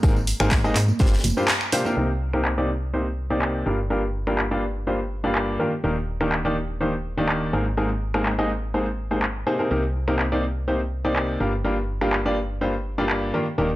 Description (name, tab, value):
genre	piano house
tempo	124 BPM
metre	4/4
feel	straight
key	C minor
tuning	A4 = 440 Hz
part	bright upright piano	riff	0.0-13.7 s	G2 to Eb5	-23 LUFS	equal	sidechain pumping, low-pass filter
part	solid FM bass	bass	0.0-13.8 s	Eb1 to Ab2	-27 LUFS	equal	sidechain pumping
part	electronic kick drum	drums	0.0-1.1 s	none	-20 LUFS	equal	none
part	tambourine and snare drum	drums	0.0-1.8 s	none	-34 LUFS	left 1 dB	high-pass filter on snare, sidechain pumping on perc, high-pass filter on perc, high-pass filter on room
part	tambourine and congas	percussion	0.0-1.9 s	none	-32 LUFS	right 5 dB	none
part	punchy analog drum machine	drums	0.3-13.2 s	finger snaps, handclaps, hi-hat	-26 LUFS	equal	low-pass filter on hats, low-pass filter on snare
room	light reverb, studio reverb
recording	transformer saturation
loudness	-21 LUFS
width	side -17 dB against mid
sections	0.0-2.0 A section; 2.0-13.8 B section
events	band accent 1.5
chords	0.0 Abadd9; 1.0 Gm7; 2.0 Cm7; 3.7 Gm7; 5.8 Ebmaj7; 7.5 Abadd9; 9.7 Cm7; 11.4 Gm7